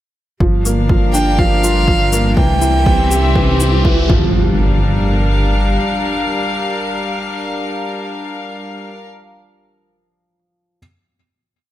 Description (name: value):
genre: piano and strings electronica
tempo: 122 BPM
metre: 4/4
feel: straight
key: G dorian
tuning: A4 = 441 Hz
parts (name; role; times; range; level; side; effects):
- clear studio string section; sustained chords; 0.4-9.0 s; C3 to F5; -20 LUFS; left 2 dB; none
- felt-muted upright piano; riff; 0.4-10.8 s; E3 to G4; -20 LUFS; equal; tape echo
- dark detuned saw bass; bass; 0.4-5.8 s; G1 to C2; -16 LUFS; equal; sidechain pumping
- electronic kick drum; drums; 0.4-4.2 s; none; -16 LUFS; equal; none
- riser and impact; sound effects; 2.2-8.8 s; none; -22 LUFS; right 1 dB; none
- shaker; drums; 0.7-3.7 s; none; -22 LUFS; left 2 dB; high-pass filter on perc, high-pass filter on room
- warm violin; melody; 1.1-3.3 s; F5 to G5; -19 LUFS; right 2 dB; tape echo
room: light reverb, small room ambience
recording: none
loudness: -12 LUFS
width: side -13 dB against mid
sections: 0.4-4.3 build; 4.3-8.3 final chord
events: build-up 0.4-4.3; riser 2.2-4.3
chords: 0.4 Gm7; 2.4 C; 4.1 G5; 4.3 Gm7